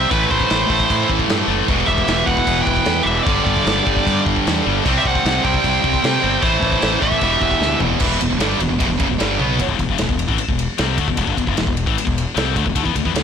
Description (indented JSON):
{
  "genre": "heavy metal",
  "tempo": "152 BPM",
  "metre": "4/4",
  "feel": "straight",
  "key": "E minor",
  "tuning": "A4 = 438 Hz",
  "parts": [
    { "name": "high-gain lead guitar", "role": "melody", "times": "0.0-7.8 s", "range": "B4 to G5", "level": "-21 LUFS", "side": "right 2 dB", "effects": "distortion, ping-pong delay" },
    { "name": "nasal lead guitar with a parked wah", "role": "second line", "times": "0.0-7.8 s", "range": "E4 to C5", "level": "-28 LUFS", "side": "right 2 dB", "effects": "overdrive" },
    { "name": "high-gain distorted guitar", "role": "riff", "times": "0.0-13.2 s", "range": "E2 to C4", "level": "-22 LUFS", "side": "left 13 dB", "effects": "distortion" },
    { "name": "tight distorted guitar", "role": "riff", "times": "0.0-9.6 s", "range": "E2 to C4", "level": "-21 LUFS", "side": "right 13 dB", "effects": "distortion" },
    { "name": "fuzz fingered electric bass", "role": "bass", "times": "0.0-13.2 s", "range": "E1 to C3", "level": "-23 LUFS", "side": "equal", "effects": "overdrive" },
    { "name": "modern studio drum kit", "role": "drums", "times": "0.1-13.2 s", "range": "crash cymbal, kick drum, ride cymbal, snare drum, toms", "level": "-21 LUFS", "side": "equal", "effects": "soft clipping on snare" }
  ],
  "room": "little or no reverb",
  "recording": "blown-out, overdriven recording, overdrive",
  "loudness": "-15 LUFS",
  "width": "side -7 dB against mid",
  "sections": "0.0-8.0 A section; 8.0-9.6 B section; 9.6-13.2 C section",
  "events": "drum fill 7.6-8.0, 9.4",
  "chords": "0.1 Am; 1.7 Em; 3.3 G5; 4.8 C5; 6.4 Am; 7.2 Em",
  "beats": "| 0.10 0.50 0.89 1.29 | 1.68 2.08 2.48 2.87 | 3.27 3.66 4.06 4.45 | 4.85 5.24 5.64 6.03 | 6.43 6.83 7.22 7.62 | 8.01 8.41 8.80 9.20 | 9.59 9.99 10.38 10.78 | 11.18 11.57 11.96 12.36 | 12.76 13.15"
}